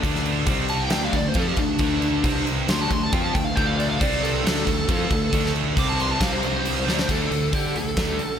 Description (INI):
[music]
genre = hard rock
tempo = 136 BPM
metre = 4/4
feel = straight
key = D minor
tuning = A4 = 440 Hz
[part]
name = cranked stack guitar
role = riff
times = 0.0-8.2 s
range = C3 to D5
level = -29 LUFS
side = right 9 dB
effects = overdrive, slapback echo
[part]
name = overdriven semi-hollow guitar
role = riff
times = 0.0-8.2 s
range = C3 to D5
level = -28 LUFS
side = left 9 dB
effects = slapback echo
[part]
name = fuzz fingered electric bass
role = bass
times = 0.0-8.2 s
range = C2 to D3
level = -28 LUFS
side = equal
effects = overdrive
[part]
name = huge arena drum kit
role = drums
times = 0.0-8.3 s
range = crash cymbal, hi-hat, kick drum, snare drum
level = -24 LUFS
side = equal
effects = none
[part]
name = smooth overdriven lead guitar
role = melody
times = 0.7-8.4 s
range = D4 to D6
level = -26 LUFS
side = right 2 dB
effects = slapback echo, analog delay
[part]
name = crunchy overdriven guitar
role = riff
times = 7.1-8.2 s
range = D3 to D5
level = -34 LUFS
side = left 1 dB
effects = none
[sound]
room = light reverb, small room reverb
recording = none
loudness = -20 LUFS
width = side -8 dB against mid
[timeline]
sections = 0.0-7.1 A section; 7.1-8.4 B section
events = lead electric guitar solo 0.0-7.1; drum fill 6.9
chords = 0.5 C5; 0.9 Dm; 2.2 C5; 2.7 Dm; 4.0 C5; 4.4 Dm; 5.8 C5; 6.9 D5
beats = | 0.04 0.48 0.92 1.36 | 1.80 2.25 2.69 3.13 | 3.57 4.01 4.45 4.89 | 5.33 5.77 6.21 6.65 | 7.09 7.53 7.97